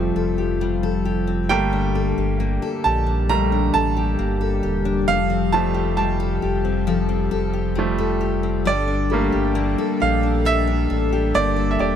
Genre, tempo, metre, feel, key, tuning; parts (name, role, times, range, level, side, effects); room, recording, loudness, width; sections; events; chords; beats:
pop ballad; 67 BPM; 4/4; straight; A4 = 438 Hz
bright baby grand piano; accompaniment; 0.0-12.0 s; F3 to Bb5; -23 LUFS; right 5 dB
chorused pulse-width pad; sustained chords; 0.0-12.0 s; D3 to A4; -24 LUFS; left 3 dB
picked steel-string acoustic guitar; arpeggios; 0.0-12.0 s; F3 to A4; -26 LUFS; left 9 dB
sub bass with octave; bass; 0.0-12.0 s; E1 to Bb1; -24 LUFS; equal
light reverb, small room ambience; -18 LUFS; side -9 dB against mid
0.0-12.0 A section
grand piano solo 0.0-12.0
0.0 Fadd9; 1.5 Gmadd9; 5.1 Fadd9; 8.7 Gmadd9
0.61 | 1.51 2.40 3.30 4.19 | 5.09 5.99 6.88 7.78 | 8.67 9.57 10.46 11.36